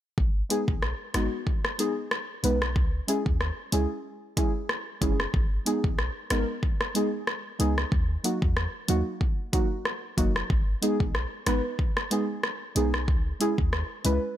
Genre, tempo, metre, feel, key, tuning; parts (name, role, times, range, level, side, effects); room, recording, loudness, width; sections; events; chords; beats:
dancehall; 93 BPM; 4/4; swing 56% on 16ths; G# minor; A4 = 440 Hz
clean 808-style bass; bass; 0.2-14.2 s; F#1 to E2; -28 LUFS; equal
deep house drum kit; drums; 0.2-14.2 s; hi-hat, kick drum, rim click; -28 LUFS; equal
deep mellow chord stab; accompaniment; 0.5-14.2 s; F#3 to B4; -28 LUFS; right 1 dB; chorus
light reverb, digital ambience; -25 LUFS; side -12 dB against mid
0.2-14.4 A section
0.2 G#m; 2.8 C#m; 5.3 G#m; 7.9 D#m; 10.5 G#m; 13.1 C#m
| 0.18 0.82 1.47 2.11 | 2.76 3.40 4.05 4.69 | 5.34 5.98 6.63 7.27 | 7.92 8.56 9.21 9.85 | 10.50 11.14 11.79 12.44 | 13.08 13.72